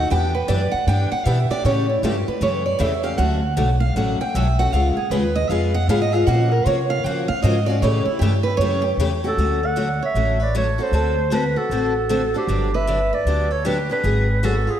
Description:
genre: acoustic string swing (jazz manouche)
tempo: 155 BPM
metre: 4/4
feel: swing 63% on 8ths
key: D major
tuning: A4 = 440 Hz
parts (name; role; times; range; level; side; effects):
- picked steel-string acoustic guitar; second line; 0.0-14.8 s; D4 to G5; -23 LUFS; right 3 dB; analog delay
- picked steel-string acoustic guitar; accompaniment; 0.0-14.5 s; C#3 to A4; -24 LUFS; left 3 dB; analog chorus
- upright bass; bass; 0.0-14.7 s; G1 to C#3; -21 LUFS; equal; none
- warm clarinet; melody; 9.3-14.8 s; G4 to F#5; -22 LUFS; right 1 dB; analog delay
room: wet lush hall reverb, RT60 1.6 s, small room ambience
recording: dreamy mix soaked in reverb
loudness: -17 LUFS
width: side -10 dB against mid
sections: 0.0-9.4 A section; 9.4-14.8 B section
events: steel-string acoustic guitar solo 0.0-9.4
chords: 0.1 Em7; 1.6 A7; 3.2 Dmaj7; 4.7 C#7; 6.3 F#maj7; 7.8 A7; 9.4 Dmaj7; 10.9 D7; 12.5 Gmaj7; 14.0 G#m7b5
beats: | 0.10 0.49 0.87 1.26 | 1.64 2.03 2.41 2.80 | 3.18 3.57 3.96 4.34 | 4.73 5.11 5.50 5.88 | 6.27 6.66 7.04 7.43 | 7.82 8.20 8.59 8.98 | 9.37 9.75 10.14 10.53 | 10.92 11.31 11.70 12.09 | 12.47 12.86 13.25 13.64 | 14.03 14.42

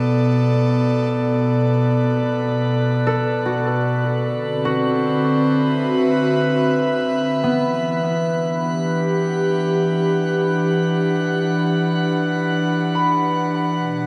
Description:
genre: ambient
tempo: 76 BPM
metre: 4/4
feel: straight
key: unclear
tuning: A4 = 442 Hz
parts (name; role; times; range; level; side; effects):
- airy breathy pad; sustained chords; 0.0-14.1 s; B2 to F#5; -20 LUFS; equal; chorus
- drifting glass-harmonics texture; texture; 1.7-14.1 s; B4 to D6; -29 LUFS; equal; chorus, built-in reverb
- concert harp; arpeggios; 3.1-14.1 s; B3 to B5; -27 LUFS; equal; diffuse ambient delay
room: wet concert hall reverb, RT60 2.2 s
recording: none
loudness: -19 LUFS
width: mono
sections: 0.0-1.1 A section; 1.1-14.1 B section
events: none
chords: 0.0 Bm7; 4.3 D13; 7.4 Em9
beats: 0.32 | 1.11 1.90 2.69 3.48 | 4.27 5.06 5.85 6.64 | 7.43 8.22 9.01 9.79 | 10.58 11.37 12.16 12.95 | 13.74

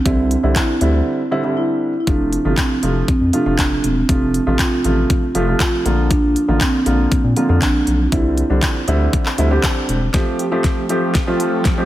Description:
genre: dance-pop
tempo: 119 BPM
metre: 4/4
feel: straight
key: F major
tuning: A4 = 440 Hz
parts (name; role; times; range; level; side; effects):
- marimba with soft mallets; melody; 0.0-9.8 s; Bb3 to F4; -20 LUFS; right 1 dB; none
- warm baby grand piano; accompaniment; 0.1-11.9 s; C3 to G4; -20 LUFS; right 1 dB; sidechain pumping
- round analog bass; bass; 0.1-10.1 s; E1 to Bb2; -18 LUFS; left 1 dB; sidechain pumping
- pop drum kit; drums; 0.1-11.8 s; handclaps, hi-hat, kick drum, snare drum; -19 LUFS; left 1 dB; none
- filtered supersaw swell; sustained chords; 10.1-11.9 s; F3 to G4; -25 LUFS; left 1 dB; sidechain pumping
- riser; sound effects; 11.3-11.9 s; none; -34 LUFS; right 4 dB; none
room: light reverb, digital ambience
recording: heavily compressed radio sound, multiband compression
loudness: -14 LUFS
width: side -14 dB against mid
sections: 0.0-10.1 A section; 10.1-11.9 B section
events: break 1.1-2.1; build-up 10.1-11.9; drum fill 10.1-11.9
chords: 0.1 Cadd9; 2.1 F; 5.9 Bb; 8.1 Cadd9; 10.1 Fadd9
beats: | 0.06 0.56 1.06 1.57 | 2.07 2.58 3.08 3.59 | 4.09 4.59 5.10 5.60 | 6.11 6.61 7.12 7.62 | 8.12 8.63 9.13 9.64 | 10.14 10.64 11.15 11.65

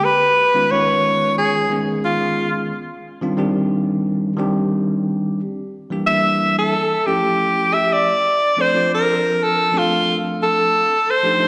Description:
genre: jazz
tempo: 90 BPM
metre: 4/4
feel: swing 53% on 16ths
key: unclear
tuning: A4 = 440 Hz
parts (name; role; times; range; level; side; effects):
- bright alto saxophone; melody; 0.0-11.5 s; F4 to E5; -18 LUFS; equal; slapback echo, tape echo
- bell-like tine electric piano; accompaniment; 0.0-11.5 s; Eb3 to A4; -24 LUFS; equal; none
room: moderate lush hall reverb, RT60 2.4 s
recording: live gig heard through the venue's PA, recital hall reverb, nothing above 10.5 kHz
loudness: -18 LUFS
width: mono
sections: 0.0-11.5 A section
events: none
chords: 0.0 Db9; 2.7 Ebmaj13; 5.4 Em7b5; 6.7 A7b13; 8.1 Dm7; 10.7 F13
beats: | 0.04 0.71 1.39 2.06 | 2.73 3.39 4.06 4.73 | 5.40 6.07 6.74 7.41 | 8.07 8.74 9.41 10.08 | 10.74 11.41

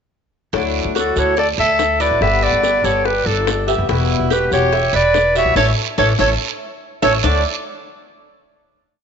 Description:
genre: latin, Cuban son and guajira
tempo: 143 BPM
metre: 4/4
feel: straight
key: D major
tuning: A4 = 440 Hz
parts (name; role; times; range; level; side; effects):
- fingerpicked swing-style acoustic guitar; accompaniment; 0.5-7.4 s; B2 to G4; -24 LUFS; left 11 dB; none
- Cuban tres; arpeggios; 0.5-7.4 s; D4 to E5; -24 LUFS; right 8 dB; none
- upright bass; bass; 0.5-7.4 s; E1 to D2; -21 LUFS; equal; none
- bongos; percussion; 0.5-7.3 s; none; -26 LUFS; left 14 dB; none
- guiro; percussion; 0.5-7.3 s; none; -28 LUFS; right 14 dB; none
- warm clarinet; melody; 1.0-7.4 s; A4 to E5; -17 LUFS; right 2 dB; none
- growling trumpet; second line; 1.0-7.4 s; A3 to C#5; -24 LUFS; left 10 dB; none
room: moderate echo chamber reverb, RT60 1.8 s, small room ambience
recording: 1960s-style stereo with parts hard left and right, nothing above 7.8 kHz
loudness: -14 LUFS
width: side -7 dB against mid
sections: 0.5-7.2 verse; 7.2-8.9 final chord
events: band accent 5.6-7.2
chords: 0.5 Dadd9; 2.2 Gadd9; 3.9 Emadd9; 5.6 A; 7.2 D5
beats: | 0.54 0.96 1.38 1.79 | 2.21 2.63 3.05 3.47 | 3.89 4.31 4.73 5.15 | 5.57 5.98 6.40 6.82 | 7.24

